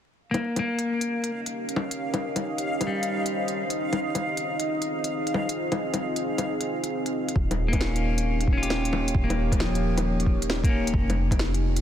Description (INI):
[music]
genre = future garage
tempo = 134 BPM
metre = 4/4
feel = swing 66% on 16ths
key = unclear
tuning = A4 = 441 Hz
[part]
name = deep dark ambient pad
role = sustained chords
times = 1.0-11.8 s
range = F3 to Eb5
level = -30 LUFS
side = equal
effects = chorus, built-in reverb, vintage 12-bit sampler grit, sidechain pumping
[part]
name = backwards swelling texture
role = texture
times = 1.1-7.4 s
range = F5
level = -34 LUFS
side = equal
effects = built-in reverb
[part]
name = clean electric guitar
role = accompaniment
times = 0.3-3.6, 7.7-11.2 s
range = F3 to G4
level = -29 LUFS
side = left 2 dB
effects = sidechain pumping, low-pass filter, tape echo
[part]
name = organic electronic drum kit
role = drums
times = 0.3-11.8 s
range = bongos, hi-hat, snare drum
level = -30 LUFS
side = left 1 dB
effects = overdrive
[part]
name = soft 808-style bass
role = bass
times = 7.4-11.8 s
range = Eb1 to F1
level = -26 LUFS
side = equal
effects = sidechain pumping
[part]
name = electronic kick drum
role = drums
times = 7.4-11.4 s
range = none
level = -24 LUFS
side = equal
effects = overdrive
[sound]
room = light reverb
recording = dense, heavily limited modern master, vinyl crackle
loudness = -24 LUFS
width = side -10 dB against mid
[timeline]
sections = 0.2-7.4 A section; 7.4-11.8 B section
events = none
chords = 0.2 Eb7; 3.8 Fm7; 7.4 Eb7; 10.9 F7(no3)